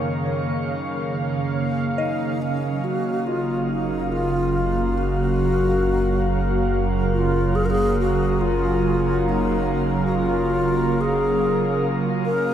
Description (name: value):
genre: ambient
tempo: 70 BPM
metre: 3/4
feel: straight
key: F# major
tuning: A4 = 441 Hz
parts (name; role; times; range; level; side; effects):
- warm analog pad; sustained chords; 0.0-12.5 s; F#2 to E#5; -22 LUFS; right 2 dB; chorus, tremolo
- soft synth bell; arpeggios; 0.0-2.8 s; C#5 to D#5; -34 LUFS; left 2 dB; chorus, phaser, diffuse ambient delay
- hollow alto flute; melody; 2.0-12.5 s; C#4 to A#4; -23 LUFS; left 2 dB; diffuse ambient delay
- deep rumbling drone; bass; 3.7-12.5 s; F#1; -27 LUFS; equal; built-in reverb
room: wet shimmer reverb, RT60 8.5 s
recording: dark, warm production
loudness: -19 LUFS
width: side -10 dB against mid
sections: 0.0-2.4 A section; 2.4-12.5 B section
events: none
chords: 0.0 F#maj7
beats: 0.70 1.55 | 2.41 3.27 4.13 | 4.98 5.84 6.70 | 7.55 8.41 9.27 | 10.13 10.98 11.84